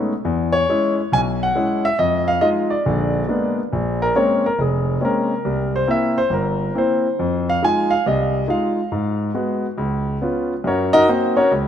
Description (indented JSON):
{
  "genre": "solo jazz",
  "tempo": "138 BPM",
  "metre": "4/4",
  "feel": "swing 67% on 8ths",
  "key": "Bb minor from 3.7 s",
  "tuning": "A4 = 441 Hz",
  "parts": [
    { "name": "warm concert grand piano", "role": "solo", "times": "0.0-11.7 s", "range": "F1 to G#5", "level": "-17 LUFS", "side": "equal", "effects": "none" }
  ],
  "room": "moderate lush hall reverb, RT60 2.6 s",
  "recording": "rough home demo mix",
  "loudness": "-17 LUFS",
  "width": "side -9 dB against mid",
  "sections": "0.0-3.7 A section; 3.7-11.7 B section",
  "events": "grand piano solo 3.7-11.7",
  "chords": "0.2 E6; 2.0 Fm7; 2.8 Bb7b9; 3.7 Bbm9; 5.4 C7; 7.2 Fm7; 8.9 Abm7; 9.8 Db7; 10.6 Gb6",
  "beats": "| 0.24 0.68 1.11 1.54 | 1.98 2.41 2.84 3.28 | 3.71 4.14 4.58 5.01 | 5.45 5.88 6.31 6.75 | 7.18 7.61 8.04 8.48 | 8.91 9.35 9.78 10.21 | 10.64 11.08 11.51"
}